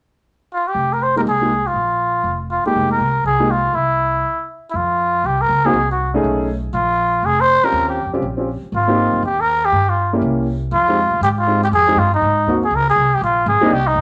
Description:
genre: jazz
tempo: 241 BPM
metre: 4/4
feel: swing 60% on 8ths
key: F minor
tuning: A4 = 440 Hz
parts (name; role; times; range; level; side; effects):
- trumpet with cup mute; melody; 0.5-14.0 s; Eb4 to C5; -18 LUFS; equal; none
- upright bass; bass; 0.7-14.0 s; F1 to Ab2; -25 LUFS; equal; none
- warm grand piano; accompaniment; 1.2-3.5, 5.6-13.7 s; G3 to Ab4; -22 LUFS; equal; none
room: moderate studio reverb, RT60 0.8 s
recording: none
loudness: -17 LUFS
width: mono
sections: 0.8-4.7 A section; 4.7-12.7 B section; 12.7-14.0 C section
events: stop 4.2-4.7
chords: 0.0 N.C.; 0.8 Fm11; 1.8 Bb5; 2.7 Fm11; 3.7 C; 4.7 F5; 5.7 Cdim; 6.2 B13; 6.7 Bb5; 7.7 Eb13; 8.7 Abmaj9; 9.7 Gm7b5; 10.2 C7b9; 10.7 Fm9; 12.2 Ab7; 12.7 Db6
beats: 0.01 0.26 0.51 | 0.76 1.00 1.25 1.50 | 1.75 2.00 2.25 2.50 | 2.75 3.00 3.25 3.50 | 3.75 4.00 4.24 4.49 | 4.74 4.99 5.24 5.49 | 5.74 5.99 6.24 6.49 | 6.74 6.99 7.24 7.49 | 7.74 7.99 8.23 8.48 | 8.73 8.98 9.23 9.48 | 9.73 9.98 10.23 10.47 | 10.72 10.97 11.22 11.47 | 11.72 11.97 12.22 12.47 | 12.71 12.96 13.21 13.46 | 13.71 13.96

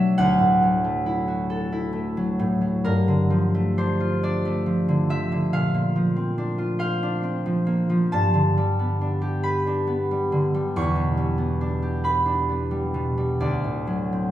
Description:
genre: classical, solo harp piece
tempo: 46 BPM (dotted quarters)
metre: 6/8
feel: rubato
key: E dorian from 8.1 s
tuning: A4 = 441 Hz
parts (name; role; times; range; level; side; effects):
- concert harp; solo; 0.0-14.3 s; D2 to C#6; -20 LUFS; equal; none
room: wet recital hall reverb, RT60 1.4 s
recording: heard from further back in the room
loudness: -21 LUFS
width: side -12 dB against mid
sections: 0.0-14.3 A section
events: none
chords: 0.2 Dmaj9; 2.8 Gm9; 5.5 A#maj9; 8.1 Gadd9; 10.7 Em7; 13.4 D7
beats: | 0.18 1.51 | 2.84 4.21 | 5.52 6.81 | 8.12 9.44 | 10.73 12.03 | 13.40

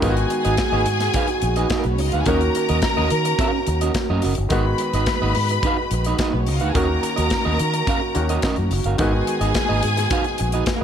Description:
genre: disco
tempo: 107 BPM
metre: 4/4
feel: straight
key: unclear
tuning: A4 = 440 Hz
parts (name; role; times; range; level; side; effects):
- rich studio string section; second line; 0.0-10.8 s; Bb3 to Cb6; -24 LUFS; left 1 dB; none
- bright baby grand piano; accompaniment; 0.0-10.8 s; Eb3 to Gb4; -27 LUFS; left 2 dB; none
- electric guitar at the edge of break-up; accompaniment; 0.0-10.8 s; Db4 to F5; -27 LUFS; right 7 dB; none
- warm French horn section; sustained chords; 0.0-10.8 s; Eb3 to Gb4; -27 LUFS; right 3 dB; stereo widening
- fingered electric bass with an envelope filter; bass; 0.0-10.6 s; Gb1 to Eb3; -22 LUFS; equal; none
- modern studio drum kit; drums; 0.0-10.8 s; hi-hat, kick drum, snare drum; -25 LUFS; left 1 dB; none
room: little or no reverb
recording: none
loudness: -18 LUFS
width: side -8 dB against mid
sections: 0.0-10.8 A section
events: none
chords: 0.0 Abm7; 2.3 Ebm7; 4.5 Abm7; 6.8 Ebm7; 9.0 Abm7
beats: | 0.03 0.59 1.15 1.71 | 2.27 2.83 3.39 3.95 | 4.51 5.07 5.63 6.19 | 6.75 7.31 7.87 8.43 | 8.99 9.55 10.11 10.67

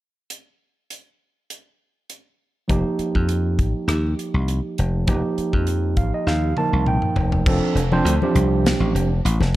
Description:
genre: electric jazz fusion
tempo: 100 BPM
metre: 4/4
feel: straight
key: F mixolydian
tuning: A4 = 439 Hz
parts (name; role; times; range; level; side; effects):
- modern studio drum kit; drums; 0.3-9.5 s; crash cymbal, hi-hat, kick drum, rim click, snare drum, toms; -24 LUFS; equal; none
- overdriven tine electric piano; accompaniment; 2.7-9.1 s; F3 to A5; -23 LUFS; right 3 dB; none
- dry thumbed slap bass; bass; 2.7-9.6 s; F1 to F2; -20 LUFS; left 1 dB; none
- congas; percussion; 7.5-9.5 s; none; -26 LUFS; left 3 dB; none
room: light reverb, studio ambience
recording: dark, warm production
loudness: -18 LUFS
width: side -16 dB against mid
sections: 0.3-2.7 A section; 2.7-7.5 B section; 7.5-9.6 C section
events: tine electric piano fill 5.7-7.5; drum fill 6.3-7.5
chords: 0.3 N.C.; 2.7 F9sus4; 7.5 F6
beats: | 0.30 0.90 1.49 2.09 | 2.69 3.29 3.88 4.48 | 5.08 5.68 6.27 6.87 | 7.46 8.06 8.65 9.25

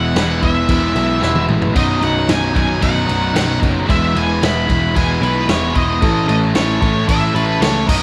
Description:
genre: classic rock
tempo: 113 BPM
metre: 4/4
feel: straight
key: unclear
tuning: A4 = 440 Hz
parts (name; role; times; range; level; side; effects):
- octave-fuzz lead guitar; melody; 0.0-8.0 s; B4 to B5; -23 LUFS; equal; distortion
- overdriven electric guitar; riff; 0.0-8.0 s; B1 to A4; -20 LUFS; equal; none
- picked electric bass; bass; 0.0-8.0 s; B0 to C#2; -23 LUFS; equal; none
- vintage drum kit; drums; 0.2-8.0 s; crash cymbal, kick drum, snare drum, toms; -22 LUFS; equal; none
room: light reverb, small room ambience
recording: none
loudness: -16 LUFS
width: mono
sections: 0.0-8.0 A section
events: drum fill 1.2-1.8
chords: 0.0 E; 1.8 B; 3.9 E; 6.0 A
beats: 0.16 0.69 1.22 | 1.76 2.29 2.82 3.35 | 3.89 4.42 4.95 5.48 | 6.02 6.55 7.08 7.61

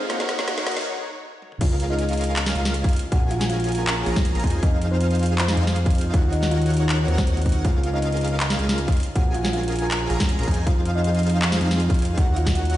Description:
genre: future bass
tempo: 159 BPM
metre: 4/4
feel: swing 53% on 16ths, half-time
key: Bb minor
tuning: A4 = 439 Hz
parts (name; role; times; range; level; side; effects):
- soft round pluck; accompaniment; 0.0-0.9 s; Bb3 to Db5; -34 LUFS; equal; lush chorus, sidechain pumping, tape echo
- rich studio string section; sustained chords; 0.0-1.6 s; Gb3 to Db5; -40 LUFS; left 1 dB; sidechain pumping
- supersaw chords; riff; 0.0-12.8 s; Db4 to Bb5; -30 LUFS; equal; sidechain pumping
- riser; sound effects; 0.0-0.9 s; none; -35 LUFS; right 2 dB; none
- trap drum kit; drums; 0.1-12.8 s; crash cymbal, handclaps, hi-hat, snare drum, toms; -27 LUFS; equal; none
- kalimba; melody; 1.6-12.8 s; C4 to Bb5; -29 LUFS; right 1 dB; sidechain pumping, tape echo
- airy dreamy lead; arpeggios; 1.6-12.8 s; F5 to Bb5; -35 LUFS; equal; chorus, sidechain pumping, tape echo
- fat analog bass; bass; 1.6-12.8 s; Bb1 to F2; -22 LUFS; equal; sidechain pumping
- electronic kick drum; drums; 1.6-12.5 s; none; -21 LUFS; equal; none
room: light reverb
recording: played on a big sound system in a bare room, stone room reverb, high-pass filter, nothing above 10.7 kHz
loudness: -19 LUFS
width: side -14 dB against mid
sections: 0.0-1.6 A section; 1.6-12.8 B section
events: build-up 0.0-1.6; drum fill 0.0-0.9, 1.4; riser 0.0-0.9; break 0.9-1.6; drop 1.6-12.8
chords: 0.1 Ebm7; 1.6 Db6; 2.9 Bbm7; 4.4 Fm7; 6.1 Ebm9; 7.6 Db6; 9.0 Bbm7; 10.5 Fm7; 12.2 Ebm9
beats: | 0.10 0.48 0.85 1.23 | 1.61 1.99 2.36 2.74 | 3.12 3.50 3.87 4.25 | 4.63 5.00 5.38 5.76 | 6.14 6.51 6.89 7.27 | 7.65 8.02 8.40 8.78 | 9.16 9.53 9.91 10.29 | 10.67 11.04 11.42 11.80 | 12.18 12.55

